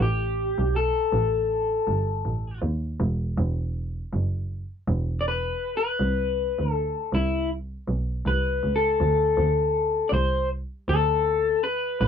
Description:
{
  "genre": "indie pop, bedroom pop",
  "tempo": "80 BPM",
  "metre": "4/4",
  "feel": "swing 55% on 16ths",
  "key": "unclear",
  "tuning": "A4 = 440 Hz",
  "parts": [
    { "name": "electric guitar through a small old amp", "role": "accompaniment", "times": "0.0-12.1 s", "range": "E4 to D5", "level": "-24 LUFS", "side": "left 4 dB", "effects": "lush chorus, warbly pitch drift" },
    { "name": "rich double bass", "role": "bass", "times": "0.0-12.1 s", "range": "E1 to D#2", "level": "-26 LUFS", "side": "right 1 dB", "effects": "none" }
  ],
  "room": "light reverb",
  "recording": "dry, close 1970s-style studio recording",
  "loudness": "-23 LUFS",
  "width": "side -8 dB against mid",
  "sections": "0.0-12.1 A section",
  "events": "clean electric guitar solo 0.0-12.1",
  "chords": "0.0 B7(#5, no3) (rootless); 3.0 Esus2; 6.0 N.C.; 9.0 D5",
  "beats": "| 0.00 0.75 1.50 2.25 | 3.01 3.76 4.51 5.26 | 6.01 6.76 7.51 8.26 | 9.01 9.77 10.52 11.27 | 12.02"
}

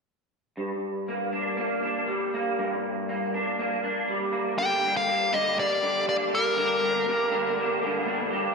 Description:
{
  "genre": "rock",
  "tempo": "120 BPM",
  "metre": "4/4",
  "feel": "straight",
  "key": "G minor",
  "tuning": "A4 = 440 Hz",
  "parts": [
    { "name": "electric guitar through a small old amp", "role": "arpeggios", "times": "0.6-8.5 s", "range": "G2 to G4", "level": "-26 LUFS", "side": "equal", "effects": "ensemble chorus, slapback echo" },
    { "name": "nasal lead guitar with a parked wah", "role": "melody", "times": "4.6-7.8 s", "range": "Bb4 to G5", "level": "-24 LUFS", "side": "left 1 dB", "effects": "overdrive, slapback echo, tape echo" }
  ],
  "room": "wet lush hall reverb, RT60 1.7 s, digital ambience",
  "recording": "big arena sound",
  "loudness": "-24 LUFS",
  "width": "side -4 dB against mid",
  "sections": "0.6-4.6 A section; 4.6-8.5 B section",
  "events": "none",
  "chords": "0.6 Gm",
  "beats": "| 0.59 1.08 1.58 2.08 | 2.58 3.08 3.58 4.08 | 4.58 5.08 5.57 6.07 | 6.57 7.07 7.57 8.07"
}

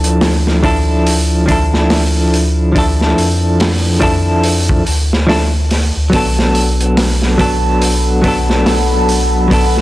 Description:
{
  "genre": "trip hop",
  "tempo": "71 BPM",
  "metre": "4/4",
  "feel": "swing 60% on 16ths",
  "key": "unclear",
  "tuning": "A4 = 440 Hz",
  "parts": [
    { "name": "clean electric guitar", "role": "accompaniment", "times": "0.0-9.8 s", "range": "F3 to A4", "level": "-14 LUFS", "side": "equal", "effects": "tremolo, tape echo" },
    { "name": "soft dub sub bass", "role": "bass", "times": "0.0-9.8 s", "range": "B1 to F2", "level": "-15 LUFS", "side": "equal", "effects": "tube saturation" },
    { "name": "crunchy breakbeat drum kit", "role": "drums", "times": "0.0-9.8 s", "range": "hi-hat, kick drum, snare drum", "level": "-17 LUFS", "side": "equal", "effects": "none" },
    { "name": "deep dark ambient pad", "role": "sustained chords", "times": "7.1-9.8 s", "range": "A4 to B5", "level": "-20 LUFS", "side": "equal", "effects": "chorus, built-in reverb, vintage 12-bit sampler grit" }
  ],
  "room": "small room ambience",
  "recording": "blown-out, overdriven recording, overdrive",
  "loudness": "-10 LUFS",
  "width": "side -16 dB against mid",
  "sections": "0.0-9.8 A section",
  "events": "none",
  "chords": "0.0 Dmadd9; 6.1 Bm7",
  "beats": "0.22 1.06 1.91 | 2.75 3.60 4.44 5.29 | 6.13 6.98 7.83 8.67 | 9.52"
}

